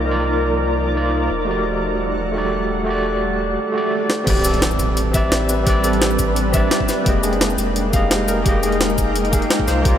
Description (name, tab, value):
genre	liquid drum and bass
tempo	172 BPM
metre	4/4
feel	straight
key	unclear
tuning	A4 = 435 Hz
part	overdriven tine electric piano	accompaniment	0.0-10.0 s	Ab3 to G5	-21 LUFS	equal	fast tremolo, low-pass filter, diffuse ambient delay
part	shimmering ambient pad	sustained chords	0.0-10.0 s	F3 to G5	-23 LUFS	equal	chorus, built-in reverb
part	sub bass with octave	bass	0.0-10.0 s	E1 to C2	-23 LUFS	equal	none
part	swell and impact	sound effects	3.7-5.7 s	none	-29 LUFS	right 1 dB	none
part	jungle sampler-style drum kit	drums	4.1-9.9 s	cabasa, crash cymbal, hi-hat, snare drum	-22 LUFS	equal	none
part	felt-muted upright piano	arpeggios	4.3-10.0 s	G4 to F5	-25 LUFS	left 2 dB	diffuse ambient delay
part	electronic kick drum	drums	4.3-9.9 s	none	-20 LUFS	equal	none
room	moderate huge ambient reverb, RT60 8.5 s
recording	dreamy mix soaked in reverb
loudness	-16 LUFS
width	side -10 dB against mid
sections	0.0-4.3 A section; 4.3-10.0 B section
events	swell 3.7-4.3; drum fill 4.1; drop 4.3-10.0; impact 4.3-5.7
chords	0.0 Cm11; 1.3 Em11; 4.3 Am11; 7.1 Fm11